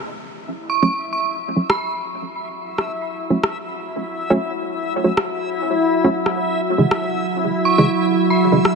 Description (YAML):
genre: deep dubstep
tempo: 138 BPM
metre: 4/4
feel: swing 60% on 16ths, half-time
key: unclear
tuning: A4 = 436 Hz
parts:
  - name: deep dark ambient pad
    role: sustained chords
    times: 2.1-8.8 s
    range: F#4 to F#5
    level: -23 LUFS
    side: right 1 dB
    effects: chorus, built-in reverb
  - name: backwards swelling texture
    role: texture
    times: 0.7-8.8 s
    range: E4 to E5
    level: -24 LUFS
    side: left 2 dB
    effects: built-in reverb
  - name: dark detuned synth bell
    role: melody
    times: 0.7-2.0, 7.7-8.7 s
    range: B5 to C#6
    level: -23 LUFS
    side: right 4 dB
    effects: chorus, tremolo, dub echo
  - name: filtered dub chord stab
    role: stabs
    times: 0.8-8.6 s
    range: C#3 to C#4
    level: -21 LUFS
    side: right 2 dB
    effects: chorus, dub echo
  - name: electronic rim click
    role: drums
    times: 1.7-8.7 s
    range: none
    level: -23 LUFS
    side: equal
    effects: small room ambience
room: light reverb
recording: none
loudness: -17 LUFS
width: side -4 dB against mid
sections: 0.0-8.8 A section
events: filter sweep on synth stab 0.0-8.8; filter sweep on ambient pad 0.0-8.8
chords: none